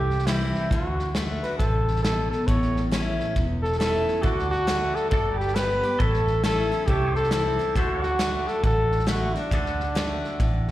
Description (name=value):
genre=honky-tonk and classic country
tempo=136 BPM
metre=4/4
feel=swing 63% on 8ths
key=D mixolydian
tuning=A4 = 440 Hz
part: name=mellow flugelhorn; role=melody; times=0.0-10.7 s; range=D4 to C#5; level=-26 LUFS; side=equal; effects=slapback echo
part: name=picked steel-string acoustic guitar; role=accompaniment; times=0.0-10.7 s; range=E2 to G4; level=-30 LUFS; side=left 2 dB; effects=slapback echo
part: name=vintage muted fingered electric bass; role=bass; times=0.0-10.7 s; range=E1 to D2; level=-27 LUFS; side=equal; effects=none
part: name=natural country drum kit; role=drums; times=0.1-10.7 s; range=hi-hat, kick drum, snare drum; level=-28 LUFS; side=equal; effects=none
part: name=pedal steel guitar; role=sustained chords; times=4.2-10.7 s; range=G4 to G5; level=-33 LUFS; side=right 1 dB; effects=none
room=small room ambience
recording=live gig heard through the venue's PA, recital hall reverb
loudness=-21 LUFS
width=side -14 dB against mid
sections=0.0-10.7 A section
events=none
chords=0.0 C; 0.7 D; 2.5 A; 4.2 D; 5.1 G; 6.0 A; 6.9 C; 7.8 D